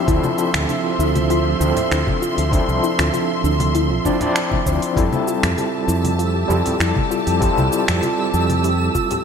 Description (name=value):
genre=sunset chillout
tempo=98 BPM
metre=4/4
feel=straight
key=F major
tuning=A4 = 440 Hz
part: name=overdriven tine electric piano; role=accompaniment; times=0.0-9.2 s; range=F3 to D5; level=-21 LUFS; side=moving between left 5 dB and right 7 dB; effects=medium tremolo, auto-pan, ping-pong delay
part: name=warm studio string section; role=sustained chords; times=0.0-9.2 s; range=F3 to C6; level=-24 LUFS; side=left 1 dB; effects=none
part: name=soft round pluck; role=arpeggios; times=0.1-9.2 s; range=D4 to C5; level=-25 LUFS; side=left 4 dB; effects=wide subtle chorus, ping-pong delay
part: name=mellow fretless electric bass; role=bass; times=0.1-8.9 s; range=C2 to F2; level=-20 LUFS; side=equal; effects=none
part: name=electronic kick drum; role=drums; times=0.1-9.1 s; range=none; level=-22 LUFS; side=equal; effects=studio reverb
part: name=smooth R&B drum kit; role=drums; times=0.1-9.2 s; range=finger snaps, hi-hat, shaker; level=-26 LUFS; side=right 1 dB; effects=studio reverb, gated reverb
part: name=congas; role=percussion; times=0.2-9.2 s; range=none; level=-29 LUFS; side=left 3 dB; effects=none
part: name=twinkling granular texture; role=texture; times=6.0-9.2 s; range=E6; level=-29 LUFS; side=right 5 dB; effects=built-in reverb
room=moderate lush hall reverb, RT60 3.1 s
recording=bright 1980s-style digital production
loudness=-16 LUFS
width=side -7 dB against mid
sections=0.0-9.2 A section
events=none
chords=0.0 Fmaj9